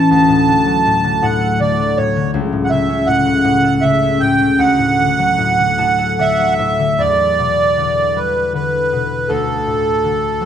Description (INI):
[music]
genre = celtic folk, Celtic slow air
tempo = 74-81 BPM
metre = 3/4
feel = rubato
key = unclear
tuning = A4 = 438 Hz
[part]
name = accordion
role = melody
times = 0.0-10.5 s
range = A4 to A5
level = -15 LUFS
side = right 3 dB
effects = light tremolo tuning
[part]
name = concert harp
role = accompaniment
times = 0.0-10.5 s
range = C#2 to A5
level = -16 LUFS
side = left 3 dB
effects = none
[sound]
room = moderate scoring stage reverb, RT60 1.8 s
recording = minimal, uncompressed stereo recording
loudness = -13 LUFS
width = side -9 dB against mid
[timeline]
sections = 0.0-7.0 A section; 7.0-10.5 B section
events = harp fill 5.4-7.0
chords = 0.1 D; 2.3 A/C#; 4.6 D; 7.0 Em7; 9.3 D5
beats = | 0.09 0.84 1.59 | 2.33 3.07 3.83 | 4.60 5.38 6.18 | 6.98 7.77 8.53 | 9.28 10.02